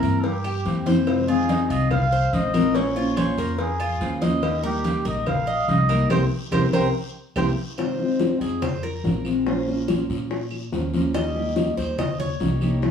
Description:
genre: latin, Cuban son and guajira.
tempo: 143 BPM.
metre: 4/4.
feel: straight.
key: F minor.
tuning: A4 = 440 Hz.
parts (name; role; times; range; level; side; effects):
trumpet with cup mute; melody; 0.0-7.5 s; G4 to F5; -27 LUFS; right 1 dB; plate reverb.
picked steel-string acoustic guitar; accompaniment; 0.0-12.9 s; C3 to C5; -24 LUFS; left 2 dB; none.
Cuban tres; arpeggios; 0.0-12.8 s; Db4 to Eb5; -28 LUFS; right 2 dB; none.
upright bass; bass; 0.0-12.9 s; Bb1 to Bb2; -26 LUFS; equal; none.
guiro; percussion; 0.0-12.9 s; none; -43 LUFS; left 3 dB; none.
congas; percussion; 0.2-12.9 s; none; -28 LUFS; equal; none.
cowbell and bongos; percussion; 0.2-12.9 s; none; -30 LUFS; left 4 dB; none.
claves; percussion; 0.4-12.8 s; none; -41 LUFS; right 4 dB; none.
room: wet studio reverb, RT60 0.8 s.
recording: heard from further back in the room, studio ambience.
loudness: -20 LUFS.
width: side -7 dB against mid.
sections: 0.0-7.8 A section; 7.8-12.9 B section.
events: band accent 6.1-7.8; drum fill 7.6; Cuban tres solo 7.8-12.9.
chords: 0.0 C7; 1.1 Fm7; 2.8 Bbmadd9; 4.4 Eb; 6.1 C7; 7.8 Fm7; 9.5 Bbmadd9; 11.1 Eb.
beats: 0.24 0.66 | 1.07 1.49 1.91 2.33 | 2.75 3.17 3.59 4.01 | 4.43 4.85 5.27 5.68 | 6.10 6.52 6.94 7.36 | 7.78 8.20 8.62 9.04 | 9.46 9.88 10.30 10.72 | 11.15 11.57 11.99 12.41 | 12.83.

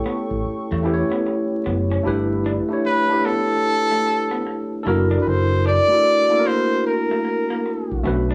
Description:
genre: R&B, neo-soul.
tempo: 75 BPM.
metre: 4/4.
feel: swing 63% on 16ths.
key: unclear.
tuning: A4 = 441 Hz.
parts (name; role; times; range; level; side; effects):
barky tine electric piano; accompaniment; 0.0-8.3 s; A3 to C#5; -24 LUFS; equal; none.
hollow soft pad; sustained chords; 0.0-2.0 s; A4 to C#6; -34 LUFS; equal; chorus.
electric guitar through a small old amp; second line; 0.1-8.3 s; A3 to D4; -32 LUFS; equal; none.
deep dub fingered electric bass; bass; 0.1-8.3 s; F#1 to E2; -24 LUFS; equal; none.
warm trumpet; melody; 2.9-8.0 s; A4 to D5; -22 LUFS; equal; none.
room: moderate small room ambience, RT60 0.5 s.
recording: band playing live in one room, vinyl crackle, faint mains hum.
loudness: -20 LUFS.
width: mono.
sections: 0.0-2.0 A section; 2.0-8.3 B section.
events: none.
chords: 0.0 A7; 2.0 G69; 4.8 F#7alt.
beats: 0.44 1.24 | 2.04 2.84 3.64 4.44 | 5.24 6.04 6.84 7.64.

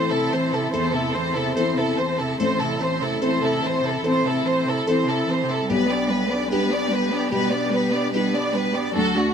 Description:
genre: neoclassical piano and strings.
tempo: 73 BPM.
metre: 4/4.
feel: rubato.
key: A minor.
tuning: A4 = 440 Hz.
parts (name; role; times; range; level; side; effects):
rich studio violin section; melody; 0.0-9.3 s; F#4 to D5; -24 LUFS; equal; none.
rich cello; second line; 0.0-9.3 s; C3 to B3; -28 LUFS; right 5 dB; none.
felt-muted upright piano; accompaniment; 0.0-9.3 s; A1 to A4; -25 LUFS; left 6 dB; none.
rich viola; accompaniment; 0.0-9.3 s; B3 to F#4; -30 LUFS; right 4 dB; none.
warm chamber string section; sustained chords; 0.0-9.3 s; C4 to B4; -33 LUFS; left 1 dB; none.
glassy wavetable pluck; arpeggios; 0.0-9.3 s; D4 to A5; -31 LUFS; right 2 dB; chorus, slapback echo.
room: little or no reverb.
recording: close, detailed microphones.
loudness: -20 LUFS.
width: side -7 dB against mid.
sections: 0.0-9.3 A section.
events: none.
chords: 0.0 Am; 5.7 G/B.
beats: 0.73 1.56 | 2.39 3.21 4.04 4.87 | 5.68 6.51 7.32 8.12 | 8.94.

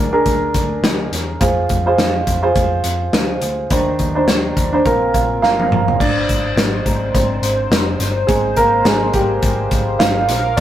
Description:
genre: piano-driven pop.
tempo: 105 BPM.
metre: 4/4.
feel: swing 56% on 16ths.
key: unclear.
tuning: A4 = 441 Hz.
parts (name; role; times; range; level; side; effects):
warm upright piano; accompaniment; 0.0-10.6 s; Bb2 to Bb5; -17 LUFS; right 2 dB; none.
vintage muted picked electric bass; bass; 0.0-10.6 s; F1 to F2; -23 LUFS; left 1 dB; none.
modern studio drum kit; drums; 0.3-10.6 s; crash cymbal, hi-hat, kick drum, snare drum, toms; -18 LUFS; left 1 dB; none.
chorused pulse-width pad; sustained chords; 6.0-10.6 s; Bb4 to D6; -24 LUFS; left 1 dB; none.
room: moderate studio reverb, RT60 0.5 s.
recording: rough rehearsal-room recording.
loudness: -14 LUFS.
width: side -11 dB against mid.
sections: 0.0-6.0 A section; 6.0-10.6 B section.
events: upright piano fill 4.9-6.0; drum fill 5.4-6.0; upright piano solo 6.0-10.6.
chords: 0.0 Bb7/D; 1.4 Fm; 3.7 Cmadd9/Eb; 4.9 Bbsus2; 6.0 Ab.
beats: 0.27 0.84 | 1.41 1.99 2.56 3.14 | 3.71 4.28 4.86 5.43 | 6.00 6.58 7.15 7.72 | 8.29 8.87 9.44 10.01 | 10.58.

